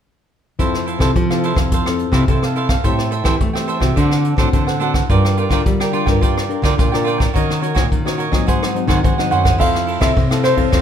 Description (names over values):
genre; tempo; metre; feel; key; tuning
samba and choro; 106 BPM; 4/4; straight; F major; A4 = 437 Hz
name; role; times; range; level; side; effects
cavaquinho; accompaniment; 0.6-10.8 s; D4 to G5; -22 LUFS; right 5 dB; none
nylon-string guitar; accompaniment; 0.6-10.8 s; Ab2 to Bb4; -22 LUFS; left 7 dB; none
nylon-string guitar; bass; 0.6-10.8 s; F2 to A3; -20 LUFS; right 1 dB; none
jazz brush drum kit; drums; 0.6-10.8 s; crash cymbal, hi-hat, kick drum, ride cymbal, rim click; -18 LUFS; equal; none
warm grand piano; melody; 9.3-10.8 s; C5 to Gb5; -18 LUFS; right 2 dB; none
room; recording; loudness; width
light reverb; minimal, uncompressed stereo recording; -14 LUFS; side -8 dB against mid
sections
0.6-9.6 A section; 9.6-10.8 B section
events
none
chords
0.6 Fmaj7; 2.8 Am7; 4.0 D7; 5.1 Gm7; 7.4 Ebm7; 8.5 Ab7; 9.6 Fmaj7